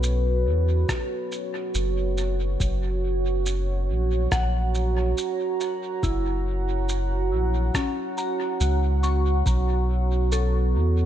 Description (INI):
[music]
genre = ambient dub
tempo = 70 BPM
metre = 4/4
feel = swing 59% on 16ths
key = unclear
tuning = A4 = 440 Hz
[part]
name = deep dark ambient pad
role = sustained chords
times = 0.0-11.1 s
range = B3 to A#5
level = -28 LUFS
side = right 3 dB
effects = chorus, built-in reverb, vintage 12-bit sampler grit
[part]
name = soft synth bell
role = arpeggios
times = 0.0-11.1 s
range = C#4 to C#6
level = -34 LUFS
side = left 3 dB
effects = chorus, analog delay
[part]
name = soft dub sub bass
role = bass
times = 0.0-11.1 s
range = F#1 to E2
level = -23 LUFS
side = equal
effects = none
[part]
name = electronic shaker and rim click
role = drums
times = 0.0-10.5 s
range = none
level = -34 LUFS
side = right 1 dB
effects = studio reverb, dub echo
[part]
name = electronic kick drum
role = drums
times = 0.9-9.7 s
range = none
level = -27 LUFS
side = equal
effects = studio reverb
[sound]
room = little or no reverb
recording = echo-heavy mix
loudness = -22 LUFS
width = side -10 dB against mid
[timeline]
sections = 0.0-11.1 A section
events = none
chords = 0.0 B7sus2; 2.6 F#7; 9.5 Bm9